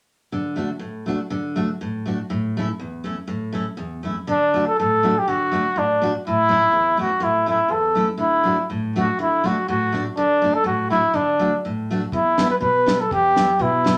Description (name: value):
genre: alpine folk, alpine dance band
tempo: 122 BPM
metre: 2/4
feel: straight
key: D major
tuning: A4 = 440 Hz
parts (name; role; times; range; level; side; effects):
- picked steel-string acoustic guitar; accompaniment; 0.3-14.0 s; E2 to F#4; -26 LUFS; equal; none
- mellow trumpet; melody; 4.3-14.0 s; D4 to B4; -20 LUFS; equal; none
- deep reggae drum kit; drums; 12.1-14.0 s; kick drum, snare drum; -28 LUFS; equal; none
room: wet studio reverb, RT60 0.5 s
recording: none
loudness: -21 LUFS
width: mono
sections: 0.3-4.3 A section; 4.3-14.0 B section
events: none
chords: 0.3 D; 2.3 A; 4.3 D; 6.2 A; 8.2 D; 12.1 Em